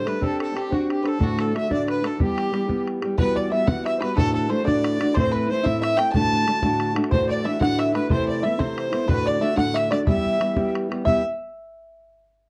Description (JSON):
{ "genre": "celtic folk, Celtic jig", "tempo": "122 BPM (dotted quarters)", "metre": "6/8", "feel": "straight", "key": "E minor", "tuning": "A4 = 440 Hz", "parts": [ { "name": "clear fiddle", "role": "melody", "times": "0.0-11.2 s", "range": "F#4 to A5", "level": "-29 LUFS", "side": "equal", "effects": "none" }, { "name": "accordion", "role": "second line", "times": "0.0-11.2 s", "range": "F#4 to A5", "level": "-32 LUFS", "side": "equal", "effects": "light tremolo tuning" }, { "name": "fingerpicked steel-string acoustic guitar", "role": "accompaniment", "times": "0.0-11.2 s", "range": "D2 to C5", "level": "-26 LUFS", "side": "equal", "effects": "none" }, { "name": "bodhran", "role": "percussion", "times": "0.1-11.2 s", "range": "none", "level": "-28 LUFS", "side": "equal", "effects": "none" }, { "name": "bluegrass banjo", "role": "second line", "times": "3.2-11.2 s", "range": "A4 to A5", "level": "-33 LUFS", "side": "equal", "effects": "none" } ], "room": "moderate studio ambience, RT60 0.5 s", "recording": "worn, warbling old tape, cassette tape, warbly pitch drift, faint mains hum", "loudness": "-22 LUFS", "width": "mono", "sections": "0.0-3.2 A section; 3.2-11.1 B section", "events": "none", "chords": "0.2 Csus2; 1.2 D; 2.2 Em; 3.2 Emadd9; 4.2 Dadd9; 5.2 Am; 6.1 D; 7.1 Dadd9; 8.1 Amadd9/C; 9.1 D; 10.1 Em", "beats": "| 0.21 0.71 | 1.20 1.70 | 2.19 2.69 | 3.18 3.68 | 4.17 4.66 | 5.15 5.65 | 6.14 6.63 | 7.12 7.61 | 8.11 8.60 | 9.09 9.58 | 10.07 10.57 | 11.06" }